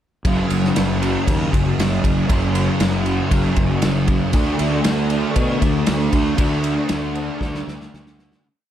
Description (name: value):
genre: rock, shoegaze and dream pop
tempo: 117 BPM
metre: 4/4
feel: straight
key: unclear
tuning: A4 = 441 Hz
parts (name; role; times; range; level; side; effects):
- thick fuzz guitar; riff; 0.2-8.4 s; Gb2 to D4; -20 LUFS; equal; distortion, ensemble chorus
- fuzz fingered electric bass; bass; 0.2-8.3 s; Gb1 to Cb3; -23 LUFS; equal; overdrive
- loose indie drum kit; drums; 0.2-8.4 s; kick drum, ride cymbal, snare drum; -22 LUFS; equal; none
room: small room ambience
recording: dark, warm production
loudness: -16 LUFS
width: side -10 dB against mid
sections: 0.3-8.4 verse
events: fade-out 6.4-8.4; drum fill 7.4-8.4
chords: 0.3 Gb5; 4.3 D5